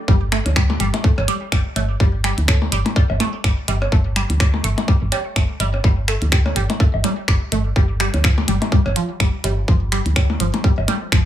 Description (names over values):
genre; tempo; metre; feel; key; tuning
minimal techno; 125 BPM; 4/4; swing 57% on 16ths; unclear; A4 = 440 Hz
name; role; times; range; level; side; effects
resonant blip pluck; riff; 0.1-11.2 s; F3 to A3; -24 LUFS; right 1 dB; phaser, sidechain pumping, digital delay
woody FM bass; bass; 0.1-11.2 s; G1 to D2; -20 LUFS; equal; tube saturation, sidechain pumping
electronic kick drum; drums; 0.1-11.2 s; none; -15 LUFS; equal; none
minimal click drum kit; drums; 0.3-11.2 s; finger snaps, hi-hat; -23 LUFS; left 1 dB; none
percussion blips and woodblock; percussion; 0.5-11.0 s; none; -25 LUFS; left 2 dB; tape echo
room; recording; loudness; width
little or no reverb; small room ambience; -16 LUFS; side -12 dB against mid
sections
0.1-11.3 A section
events
drop 0.1-11.3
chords
0.1 G5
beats
| 0.08 0.56 1.04 1.52 | 2.00 2.48 2.96 3.44 | 3.92 4.40 4.88 5.36 | 5.84 6.32 6.80 7.28 | 7.76 8.24 8.72 9.20 | 9.68 10.16 10.64 11.12